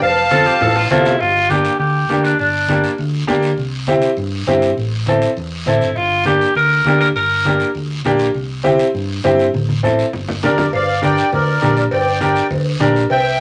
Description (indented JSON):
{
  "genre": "latin, cumbia",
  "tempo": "202 BPM",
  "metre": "4/4",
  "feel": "straight",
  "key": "G dorian",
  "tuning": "A4 = 441 Hz",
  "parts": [
    { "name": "accordion", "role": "melody", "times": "0.0-0.9, 10.4-13.4 s", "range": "Bb4 to A5", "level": "-19 LUFS", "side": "equal", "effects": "light tremolo tuning" },
    { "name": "hollow-body short-scale fingered electric bass", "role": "bass", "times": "0.0-13.4 s", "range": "F1 to G2", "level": "-24 LUFS", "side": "equal", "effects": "none" },
    { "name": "congas", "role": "percussion", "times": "0.0-13.2 s", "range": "none", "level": "-27 LUFS", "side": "equal", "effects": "none" },
    { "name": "cowbell and timbales", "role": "percussion", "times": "0.0-1.1, 10.7-13.2 s", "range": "none", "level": "-25 LUFS", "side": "equal", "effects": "none" },
    { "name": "guiro", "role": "percussion", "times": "0.0-13.4 s", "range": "none", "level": "-33 LUFS", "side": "equal", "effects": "none" },
    { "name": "raspy tenor saxophone", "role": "second line", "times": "0.3-2.9, 5.7-7.7 s", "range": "D4 to Bb4", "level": "-18 LUFS", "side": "equal", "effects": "none" },
    { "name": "bright upright piano", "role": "accompaniment", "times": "0.3-13.0 s", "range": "Bb3 to Bb4", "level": "-19 LUFS", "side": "equal", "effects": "none" }
  ],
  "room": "wet studio reverb, RT60 0.5 s",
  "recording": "none",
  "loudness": "-16 LUFS",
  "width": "mono",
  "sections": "0.0-1.2 A section; 1.2-10.7 B section; 10.7-13.4 C section",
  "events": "drum fill 0.6-1.2, 9.5-10.7; tenor saxophone solo 1.2-10.7",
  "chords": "0.0 F; 1.2 Gm; 3.6 C; 4.8 Am; 6.0 Gm; 8.3 C; 9.5 Am; 10.1 Gm"
}